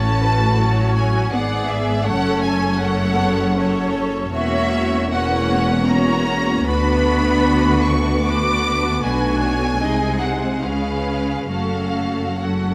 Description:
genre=classical, slow romantic movement for string orchestra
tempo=66-83 BPM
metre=3/4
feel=rubato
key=F# minor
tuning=A4 = 443 Hz
part: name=clear symphonic violin section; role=melody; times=0.0-12.7 s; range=E5 to D6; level=-26 LUFS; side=equal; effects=none
part: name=clear symphonic violin section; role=second line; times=0.0-12.7 s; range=F#4 to D#5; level=-26 LUFS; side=equal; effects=none
part: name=clear symphonic viola section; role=accompaniment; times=0.0-12.7 s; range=F#3 to D#4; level=-25 LUFS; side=equal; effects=none
part: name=rich symphonic cello section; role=bass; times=0.0-12.7 s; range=D2 to C#3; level=-25 LUFS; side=equal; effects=none
part: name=rich symphonic double bass section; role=bass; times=0.0-12.7 s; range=E1 to D2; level=-26 LUFS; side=equal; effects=none
room=light reverb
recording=close, detailed microphones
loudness=-19 LUFS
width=mono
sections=0.0-12.7 A section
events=none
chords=0.0 F#m/A; 2.1 F#m; 4.3 F#7/E; 6.7 Bm/D; 9.0 Bm7; 9.8 G#7/B#; 10.6 C#7; 11.5 F#m

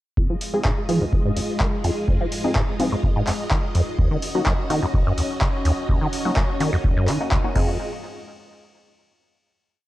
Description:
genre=acid house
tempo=126 BPM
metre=4/4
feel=straight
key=F phrygian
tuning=A4 = 440 Hz
part: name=string machine, full ensemble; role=sustained chords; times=0.2-7.8 s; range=Ab3 to Eb5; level=-29 LUFS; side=equal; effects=ensemble chorus, sidechain pumping
part: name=liquid acid bass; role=riff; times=0.2-7.8 s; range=Eb1 to Ab3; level=-24 LUFS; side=equal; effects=phaser, cassette tape, sidechain pumping, tape echo
part: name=electronic kick drum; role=drums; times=0.2-7.7 s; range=none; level=-22 LUFS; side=equal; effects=none
part: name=booming analog drum machine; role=drums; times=0.4-7.7 s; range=crash cymbal, handclaps, hi-hat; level=-29 LUFS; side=equal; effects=none
part: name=filtered dub chord stab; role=stabs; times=0.5-7.7 s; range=Bb3 to Ab4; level=-28 LUFS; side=left 2 dB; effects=phaser, cassette tape, tape echo
room=digital ambience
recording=dry, gritty hardware recording, cassette tape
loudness=-19 LUFS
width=side -16 dB against mid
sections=0.2-7.8 groove; 7.8-9.7 final hit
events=filter sweep on acid bass 0.2-7.8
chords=0.2 Fm7; 4.0 Ebm7; 7.6 Fm7; 7.8 N.C.

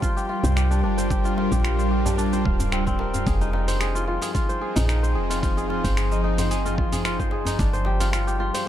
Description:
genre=organic downtempo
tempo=111 BPM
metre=4/4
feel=swing 54% on 16ths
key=F dorian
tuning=A4 = 438 Hz
part: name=bowed-like drone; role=sustained chords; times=0.0-8.7 s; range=F3 to G5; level=-28 LUFS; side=equal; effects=built-in reverb, sidechain pumping
part: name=kora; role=arpeggios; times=0.0-8.7 s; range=C4 to F5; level=-27 LUFS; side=left 1 dB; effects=dub echo
part: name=dusty soul sampler-style drum kit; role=drums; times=0.0-8.6 s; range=cabasa, finger snaps, hi-hat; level=-32 LUFS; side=right 1 dB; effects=overdrive
part: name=electronic kick drum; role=drums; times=0.0-7.7 s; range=none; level=-25 LUFS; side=equal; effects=overdrive
part: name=woody FM bass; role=bass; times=0.4-8.5 s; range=D1 to C2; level=-24 LUFS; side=equal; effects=sidechain pumping
part: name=djembe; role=percussion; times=0.4-8.6 s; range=none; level=-34 LUFS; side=left 1 dB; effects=none
room=light reverb, digital ambience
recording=echo-heavy mix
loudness=-20 LUFS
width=side -11 dB against mid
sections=0.0-8.7 A section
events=none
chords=0.0 Gm7; 3.3 Fm7; 7.6 Gm7

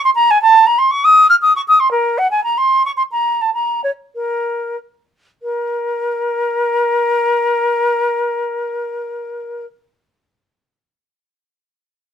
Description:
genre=classical, baroque-style fantasia for unaccompanied flute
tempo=90-122 BPM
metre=3/4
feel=rubato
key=Bb minor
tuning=A4 = 445 Hz
part: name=silver concert flute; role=solo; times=0.0-9.7 s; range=Bb4 to F6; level=-13 LUFS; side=equal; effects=none
room=light reverb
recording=close, detailed microphones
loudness=-13 LUFS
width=side -8 dB against mid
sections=0.0-5.4 A section; 5.4-9.3 B section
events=slowing down 1.2-5.4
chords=none

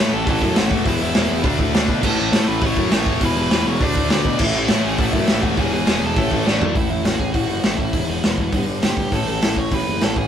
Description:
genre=punk rock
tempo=204 BPM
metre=4/4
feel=straight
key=unclear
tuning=A4 = 440 Hz
part: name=biting lead guitar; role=melody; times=0.0-10.3 s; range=B3 to D6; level=-26 LUFS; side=right 3 dB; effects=overdrive
part: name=overdriven semi-hollow guitar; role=riff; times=0.0-10.3 s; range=E2 to D4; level=-26 LUFS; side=left 8 dB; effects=none
part: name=sludgy distorted guitar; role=riff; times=0.0-10.3 s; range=E2 to D4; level=-27 LUFS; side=right 3 dB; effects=overdrive
part: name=tight distorted guitar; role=riff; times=0.0-6.7 s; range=E2 to D4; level=-24 LUFS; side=left 1 dB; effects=distortion
part: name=growling picked electric bass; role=bass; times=0.0-10.3 s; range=E1 to B2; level=-24 LUFS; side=right 1 dB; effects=overdrive
part: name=raw garage drum kit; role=drums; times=0.3-10.2 s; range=crash cymbal, hi-hat, kick drum, snare drum, toms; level=-20 LUFS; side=equal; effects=none
room=light reverb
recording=rough rehearsal-room recording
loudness=-16 LUFS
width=side -9 dB against mid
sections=0.0-6.8 A section; 6.8-10.3 B section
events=drum fill 6.5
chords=0.0 A5; 0.9 E5; 1.4 D5; 2.0 A; 3.2 E5; 3.8 D5; 4.4 A5; 5.6 E; 6.2 A5; 7.9 E5; 8.5 G; 9.1 A

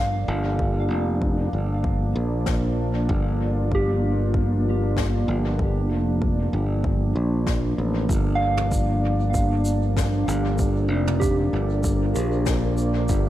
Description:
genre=ambient dub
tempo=96 BPM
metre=4/4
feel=swing 55% on 16ths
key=G minor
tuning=A4 = 443 Hz
part: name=warbly tape-like pad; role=sustained chords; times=0.0-13.3 s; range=F3 to D5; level=-26 LUFS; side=equal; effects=chorus, built-in reverb
part: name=soft synth bell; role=arpeggios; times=0.0-13.3 s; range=G4 to F5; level=-30 LUFS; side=right 2 dB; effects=chorus, dub echo
part: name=modern bright fingered electric bass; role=bass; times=0.0-13.3 s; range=F1 to Bb1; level=-23 LUFS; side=equal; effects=tube saturation
part: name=electronic kick drum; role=drums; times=0.6-13.2 s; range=none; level=-26 LUFS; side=equal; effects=none
part: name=jazz brush drum kit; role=drums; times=2.5-13.2 s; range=shaker, snare drum, toms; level=-35 LUFS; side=left 2 dB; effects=dub echo
room=light reverb, studio ambience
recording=none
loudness=-20 LUFS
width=side -13 dB against mid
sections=0.0-8.1 A section; 8.1-13.3 B section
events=none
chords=0.0 Gm7

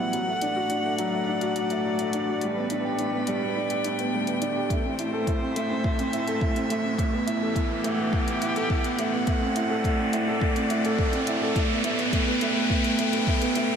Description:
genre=piano and strings electronica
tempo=105 BPM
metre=4/4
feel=straight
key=unclear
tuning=A4 = 442 Hz
part: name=rich string quartet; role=sustained chords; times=0.0-13.8 s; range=A2 to G5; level=-30 LUFS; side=left 1 dB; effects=none
part: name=dark concert grand piano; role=riff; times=0.0-13.8 s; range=F#3 to A4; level=-26 LUFS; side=right 1 dB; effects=digital delay
part: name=dark detuned saw bass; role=bass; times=0.0-13.8 s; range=E1 to D2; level=-43 LUFS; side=equal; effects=none
part: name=riser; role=sound effects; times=2.6-13.8 s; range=none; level=-32 LUFS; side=equal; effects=none
part: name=electronic hi-hat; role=drums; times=0.1-13.7 s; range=none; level=-36 LUFS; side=left 3 dB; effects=high-pass filter on hats, high-pass filter on room
part: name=electronic kick drum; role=drums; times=4.7-13.4 s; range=none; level=-27 LUFS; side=equal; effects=none
room=moderate scoring stage reverb, RT60 2.0 s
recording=none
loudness=-23 LUFS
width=side -7 dB against mid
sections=0.0-13.8 A section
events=build-up 0.0-13.8; riser 2.6-13.8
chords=0.1 D; 2.4 G; 4.7 Am; 7.0 Emadd9; 9.3 D; 11.6 G

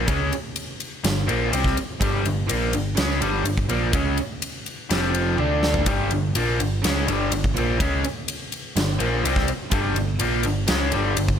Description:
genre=hard rock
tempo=124 BPM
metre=4/4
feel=straight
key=G minor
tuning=A4 = 443 Hz
part: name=biting overdriven guitar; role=riff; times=0.0-11.4 s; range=F2 to D4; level=-26 LUFS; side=left 10 dB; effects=none
part: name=biting overdriven guitar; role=riff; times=0.0-11.4 s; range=F2 to D4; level=-27 LUFS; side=right 11 dB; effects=none
part: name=overdriven picked electric bass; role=bass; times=0.0-11.4 s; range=F1 to D2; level=-25 LUFS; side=equal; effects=none
part: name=huge arena drum kit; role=drums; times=0.1-11.4 s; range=kick drum, ride cymbal, snare drum, toms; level=-26 LUFS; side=equal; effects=none
room=small room ambience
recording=none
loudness=-20 LUFS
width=side -8 dB against mid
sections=0.0-11.4 A section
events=drum fill 5.4-5.9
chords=0.0 Gm; 4.9 F5; 5.4 D5; 5.9 Gm

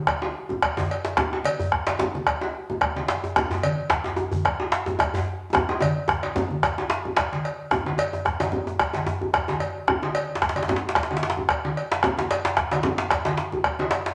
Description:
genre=west african traditional, West African drum ensemble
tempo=111 BPM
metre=4/4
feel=swing 54% on 16ths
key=none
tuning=none
part: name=bombo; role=percussion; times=0.1-13.8 s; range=none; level=-27 LUFS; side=equal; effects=none
part: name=cowbell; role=percussion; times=0.1-14.1 s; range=none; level=-32 LUFS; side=equal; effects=none
part: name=djembe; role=percussion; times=0.1-13.9 s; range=none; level=-32 LUFS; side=equal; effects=none
part: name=congas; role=percussion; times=0.5-13.9 s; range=none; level=-33 LUFS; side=equal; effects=none
part: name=djembe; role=percussion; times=0.8-14.1 s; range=none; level=-30 LUFS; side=equal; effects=none
room=wet large studio reverb, RT60 0.9 s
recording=none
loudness=-25 LUFS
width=mono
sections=0.0-7.7 A section; 7.7-14.1 B section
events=drum fill 5.5-7.7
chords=none

